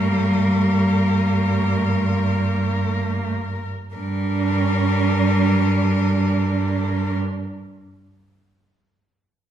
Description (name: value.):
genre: classical, lyrical piece for cello ensemble.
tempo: free time.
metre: none.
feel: none.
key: G minor.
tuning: A4 = 435 Hz.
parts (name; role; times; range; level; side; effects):
rich cello; melody; 0.0-7.1 s; Bb4; -28 LUFS; left 6 dB; none.
rich cello; second line; 0.0-7.1 s; Bb3 to D4; -26 LUFS; right 7 dB; none.
rich cello; accompaniment; 0.0-7.1 s; G3; -22 LUFS; equal; none.
rich cello; bass; 0.0-7.1 s; G2; -23 LUFS; right 2 dB; none.
room: wet recital hall reverb, RT60 1.3 s.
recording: heard from further back in the room.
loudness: -18 LUFS.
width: side -10 dB against mid.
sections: 0.0-4.0 A section; 4.0-8.7 B section.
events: slowing down 0.0-4.0.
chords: 0.0 Gm.